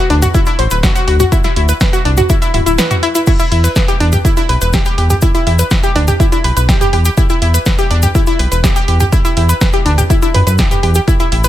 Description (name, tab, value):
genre	melodic techno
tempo	123 BPM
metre	4/4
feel	straight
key	E minor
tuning	A4 = 443 Hz
part	analog pluck	arpeggios	0.0-11.5 s	D4 to C6	-15 LUFS	left 1 dB	chorus, sidechain pumping, ping-pong delay
part	round analog bass	bass	0.1-11.5 s	D1 to F#2	-12 LUFS	equal	sidechain pumping
part	punchy analog drum machine	drums	0.1-11.5 s	crash cymbal, hi-hat, snare drum, toms	-19 LUFS	right 1 dB	none
part	cabasa	percussion	0.2-11.5 s	none	-25 LUFS	left 4 dB	none
part	electronic kick drum	drums	0.3-11.2 s	none	-14 LUFS	equal	none
room	digital ambience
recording	none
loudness	-10 LUFS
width	side -13 dB against mid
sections	0.0-11.5 A section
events	none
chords	0.0 D; 3.3 Em7